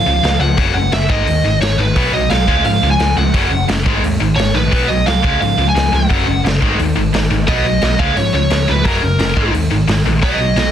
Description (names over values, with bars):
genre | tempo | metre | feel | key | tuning
punk rock | 174 BPM | 4/4 | straight | unclear | A4 = 440 Hz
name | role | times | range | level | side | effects
lead guitar through a small cranked amp | melody | 0.0-10.7 s | A#4 to G#5 | -18 LUFS | right 2 dB | overdrive
tight distorted guitar | riff | 0.0-10.7 s | F#2 to B3 | -18 LUFS | left 8 dB | distortion
overdriven picked electric bass | bass | 0.1-10.7 s | F#1 to G#2 | -18 LUFS | equal | none
raw garage drum kit | drums | 0.2-10.7 s | hi-hat, kick drum, snare drum | -19 LUFS | right 1 dB | none
distorted electric guitar | riff | 2.0-10.7 s | F#2 to C#4 | -22 LUFS | right 13 dB | distortion
room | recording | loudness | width
little or no reverb | dense, heavily limited modern master | -12 LUFS | side -10 dB against mid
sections
0.0-10.7 A section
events
none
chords
0.0 C#; 0.6 F#5; 1.1 G#5; 2.0 B5; 2.5 C#; 3.3 F#5; 3.9 G#5; 4.7 B5; 5.2 C#; 6.1 F#5; 6.6 G#5; 7.5 B; 8.0 C#; 8.9 F#; 9.4 G#5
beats
0.23 | 0.58 0.92 1.27 1.61 | 1.96 2.31 2.65 3.00 | 3.34 3.69 4.03 4.38 | 4.72 5.07 5.41 5.76 | 6.10 6.45 6.79 7.13 | 7.48 7.82 8.17 8.51 | 8.85 9.20 9.54 9.88 | 10.23 10.57